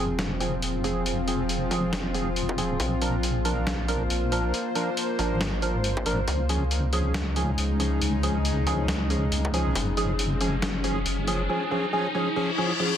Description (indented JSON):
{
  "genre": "deep dubstep",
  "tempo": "138 BPM",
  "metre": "4/4",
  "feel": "swing 59% on 16ths, half-time",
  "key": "unclear",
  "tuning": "A4 = 440 Hz",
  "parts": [
    { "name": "bowed-like drone", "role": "sustained chords", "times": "0.0-11.5 s", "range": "Db3 to C5", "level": "-30 LUFS", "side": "left 2 dB", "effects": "built-in reverb" },
    { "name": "percussive organ stab", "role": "stabs", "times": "0.0-12.9 s", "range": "F3 to Bb4", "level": "-29 LUFS", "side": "right 1 dB", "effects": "analog chorus, dub echo" },
    { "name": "deep soft wobble bass", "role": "bass", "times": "0.0-11.5 s", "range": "F1 to Db2", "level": "-28 LUFS", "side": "equal", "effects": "chorus" },
    { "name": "trip hop sampler-style drum kit", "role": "drums", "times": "0.2-11.4 s", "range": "hi-hat, snare drum", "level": "-31 LUFS", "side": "left 1 dB", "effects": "none" },
    { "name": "electronic kick drum", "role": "drums", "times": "1.7-9.9 s", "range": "none", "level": "-34 LUFS", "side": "equal", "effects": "distortion, high-pass filter on kick" },
    { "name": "riser and reverse cymbal", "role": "sound effects", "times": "8.6-13.0 s", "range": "none", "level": "-32 LUFS", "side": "left 2 dB", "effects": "none" }
  ],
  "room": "moderate digital room reverb, RT60 1.1 s",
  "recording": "dense, heavily limited modern master, vinyl crackle",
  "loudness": "-23 LUFS",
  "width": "side -9 dB against mid",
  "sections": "0.0-13.0 A section",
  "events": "build-up 0.0-13.0; filter sweep on synth stab 0.0-13.0; riser 8.6-13.0; reverse cymbal 12.4-13.0",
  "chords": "0.0 Fm; 2.8 Bb; 6.3 Db; 9.8 Gb5",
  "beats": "0.19 0.62 | 1.06 1.50 1.93 2.36 | 2.80 3.23 3.67 4.10 | 4.54 4.97 5.41 5.84 | 6.28 6.71 7.15 7.58 | 8.02 8.45 8.89 9.32 | 9.76 10.19 10.62 11.06 | 11.49 11.93 12.36 12.80"
}